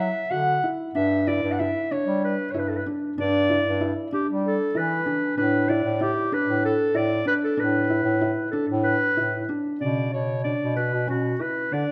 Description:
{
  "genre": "contemporary instrumental, chamber music in an uneven meter",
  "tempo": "190 BPM (eighths)",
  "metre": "7/8",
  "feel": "straight",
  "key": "B minor",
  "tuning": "A4 = 438 Hz",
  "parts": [
    { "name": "warm clarinet", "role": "melody", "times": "0.0-11.9 s", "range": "F#4 to F#5", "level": "-28 LUFS", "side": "equal", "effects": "none" },
    { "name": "felt-muted upright piano", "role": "arpeggios", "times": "0.0-11.9 s", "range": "C#3 to F#4", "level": "-30 LUFS", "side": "equal", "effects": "none" },
    { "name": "warm bass clarinet", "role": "bass", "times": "0.0-11.8 s", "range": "G2 to G3", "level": "-29 LUFS", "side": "equal", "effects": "none" }
  ],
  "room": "moderate scoring stage reverb, RT60 1.6 s",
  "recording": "none",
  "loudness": "-24 LUFS",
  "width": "mono",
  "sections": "0.0-9.8 A section; 9.8-11.9 B section",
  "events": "none",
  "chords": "0.0 F#5; 1.0 G6; 5.4 Asus24; 9.8 Bmadd9"
}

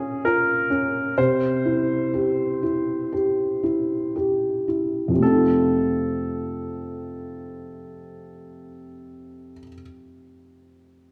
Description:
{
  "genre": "pop",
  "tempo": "55-66 BPM",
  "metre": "4/4",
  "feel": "straight",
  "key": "unclear",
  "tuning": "A4 = 438 Hz",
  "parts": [
    { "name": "clear concert grand piano", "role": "melody", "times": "0.0-9.7 s", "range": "Ab4 to C5", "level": "-29 LUFS", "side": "equal", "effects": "none" },
    { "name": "felt-muted upright piano", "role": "accompaniment", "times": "0.0-11.1 s", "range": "F2 to G4", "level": "-25 LUFS", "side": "equal", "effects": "none" }
  ],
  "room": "moderate recital hall reverb, RT60 1.6 s",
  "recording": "dark, warm production",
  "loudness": "-22 LUFS",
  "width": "mono",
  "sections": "0.0-5.2 A section; 5.2-9.6 B section",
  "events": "slowing down 0.0-5.2",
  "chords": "0.0 Bbm; 1.2 C; 5.2 F7"
}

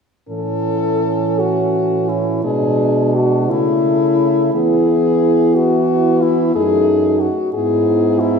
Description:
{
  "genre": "classical, lyrical piece for horn quartet",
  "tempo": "55-62 BPM (dotted quarters)",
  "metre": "6/8",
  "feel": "rubato",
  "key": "A major",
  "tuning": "A4 = 445 Hz",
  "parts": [
    { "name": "clear French horn", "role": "melody", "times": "0.3-8.4 s", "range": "E4 to A4", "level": "-17 LUFS", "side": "left 6 dB", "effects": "none" },
    { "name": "mellow French horn", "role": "second line", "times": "0.3-8.4 s", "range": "C#4 to E4", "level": "-19 LUFS", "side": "right 6 dB", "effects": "none" },
    { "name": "mellow French horn", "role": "accompaniment", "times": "0.3-8.4 s", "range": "E3 to B3", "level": "-22 LUFS", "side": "left 1 dB", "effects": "none" },
    { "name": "mellow French horn", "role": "bass", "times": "0.3-8.4 s", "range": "F#2 to E3", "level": "-20 LUFS", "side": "right 3 dB", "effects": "none" }
  ],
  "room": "wet recital hall reverb, RT60 1.9 s",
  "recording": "recorded in a church or concert hall",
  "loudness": "-13 LUFS",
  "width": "side -6 dB against mid",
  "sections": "0.3-8.4 A section",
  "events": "none",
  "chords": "0.3 A; 2.4 G#dim/B; 3.5 A/C#; 4.5 E; 6.5 D#dim/F#; 7.5 E/G#"
}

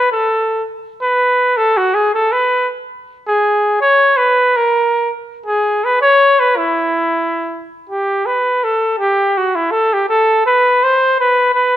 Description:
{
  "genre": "alpine folk",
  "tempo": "163 BPM",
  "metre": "3/4",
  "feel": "rubato",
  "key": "E major",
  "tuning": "A4 = 443 Hz",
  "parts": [
    { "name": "clear flugelhorn", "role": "solo", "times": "0.0-11.8 s", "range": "E4 to C#5", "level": "-12 LUFS", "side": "equal", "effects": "none" }
  ],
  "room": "moderate recital hall reverb, RT60 1.4 s",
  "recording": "none",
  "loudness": "-12 LUFS",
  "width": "side -12 dB against mid",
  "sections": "0.0-7.9 A section; 7.9-11.8 B section",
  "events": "none",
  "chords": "none"
}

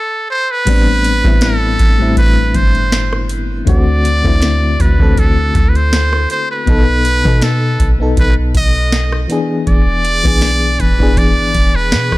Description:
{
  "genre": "contemporary R&B",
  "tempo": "80 BPM",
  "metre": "4/4",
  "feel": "swing 54% on 16ths",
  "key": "unclear",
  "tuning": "A4 = 439 Hz",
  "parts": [
    { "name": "trumpet with metal mute", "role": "melody", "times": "0.0-12.2 s", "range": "A4 to D#5", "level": "-17 LUFS", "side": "right 1 dB", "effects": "tape echo" },
    { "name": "FM electric piano with tremolo", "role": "accompaniment", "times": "0.7-12.2 s", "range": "A2 to A4", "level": "-18 LUFS", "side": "left 3 dB", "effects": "none" },
    { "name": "soft 808-style bass", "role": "bass", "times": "0.7-12.2 s", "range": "E1 to B2", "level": "-15 LUFS", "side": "equal", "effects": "none" },
    { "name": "booming analog drum machine", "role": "drums", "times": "0.7-12.2 s", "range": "crash cymbal, hi-hat, kick drum, rim click, snare drum", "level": "-14 LUFS", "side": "equal", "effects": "none" }
  ],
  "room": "little or no reverb",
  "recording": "none",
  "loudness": "-10 LUFS",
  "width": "side -18 dB against mid",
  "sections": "0.7-12.2 A section",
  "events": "stop 0.0-0.7",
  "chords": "0.0 D7(no3) (rootless); 0.7 Am11; 3.7 D7; 6.7 B7; 9.3 E7"
}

